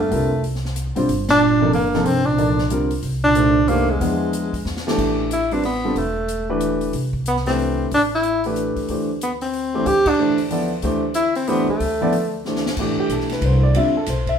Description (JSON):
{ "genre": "modal jazz", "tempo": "185 BPM", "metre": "3/4", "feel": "swing 62% on 8ths", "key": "A minor from 5.0 s", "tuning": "A4 = 440 Hz", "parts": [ { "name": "mellow tenor saxophone", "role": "melody", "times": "0.0-12.4 s", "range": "Ab3 to G4", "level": "-19 LUFS", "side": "right 1 dB", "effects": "none" }, { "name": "dark bass clarinet", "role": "second line", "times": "0.0-4.7 s", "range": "E2 to Bb2", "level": "-25 LUFS", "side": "left 1 dB", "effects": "none" }, { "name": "upright bass", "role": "bass", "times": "0.0-14.4 s", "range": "E1 to G2", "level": "-24 LUFS", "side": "equal", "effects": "none" }, { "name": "warm grand piano", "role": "accompaniment", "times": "0.1-14.4 s", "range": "C3 to E5", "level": "-21 LUFS", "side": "equal", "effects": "none" }, { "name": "swinging big-band drum kit", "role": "drums", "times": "0.1-14.3 s", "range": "crash cymbal, hi-hat, kick drum, ride cymbal, snare drum", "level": "-32 LUFS", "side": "left 1 dB", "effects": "none" } ], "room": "wet studio reverb, RT60 0.8 s", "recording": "heard from further back in the room", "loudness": "-17 LUFS", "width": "side -7 dB against mid", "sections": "0.0-5.0 A section; 5.0-12.8 B section; 12.8-14.4 C section", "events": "band accent 1.2, 10.0; drum fill 4.7-5.0, 12.5-12.8", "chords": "0.0 Cm11; 4.0 E7b9; 5.0 Am11; 8.9 D9sus4; 12.8 D7sus2" }